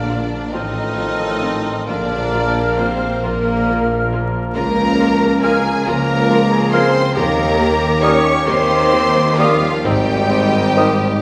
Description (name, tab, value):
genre	classical, slow romantic movement for symphony orchestra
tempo	45 BPM (dotted quarters)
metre	6/8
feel	uneven beats, rubato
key	unclear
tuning	A4 = 440 Hz
part	rich studio violin section	melody	0.0-11.2 s	Bb4 to Db6	-26 LUFS	equal	none
part	dark clarinet	second line	0.0-10.9 s	A4 to C5	-28 LUFS	equal	none
part	mellow silver concert flute	second line	0.0-11.0 s	Eb6 to F6	-27 LUFS	equal	none
part	rich studio violin section	second line	0.0-11.2 s	Bb3 to Db5	-25 LUFS	equal	none
part	mellow bassoon	accompaniment	0.0-10.9 s	Eb3 to C4	-27 LUFS	equal	none
part	dark French horn section	sustained chords	0.0-11.2 s	Bb2 to Db4	-26 LUFS	equal	none
part	mellow trombone section	sustained chords	0.0-11.2 s	Eb3 to C4	-28 LUFS	equal	none
part	concert harp	arpeggios	0.0-11.2 s	Ab2 to C5	-33 LUFS	equal	none
part	mellow trumpet section	stabs	0.0-11.2 s	Eb4 to Bb4	-26 LUFS	equal	none
part	rich studio cello section	bass	0.0-11.1 s	Ab2 to Eb3	-26 LUFS	equal	none
part	rich studio double bass section	bass	0.0-11.1 s	Ab1 to Eb2	-26 LUFS	equal	none
part	warm tuba	bass	0.0-11.1 s	Ab1 to Eb2	-26 LUFS	equal	none
part	rich symphonic viola section	accompaniment	0.1-10.8 s	Bb3 to G4	-30 LUFS	equal	none
room	wet scoring stage reverb, RT60 1.6 s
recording	heard from further back in the room, vinyl crackle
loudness	-16 LUFS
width	mono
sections	0.0-11.2 A section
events	none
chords	0.0 Bb; 0.5 F/A; 1.9 Bb; 4.6 Bbm/Db; 7.2 Eb7; 9.8 Ab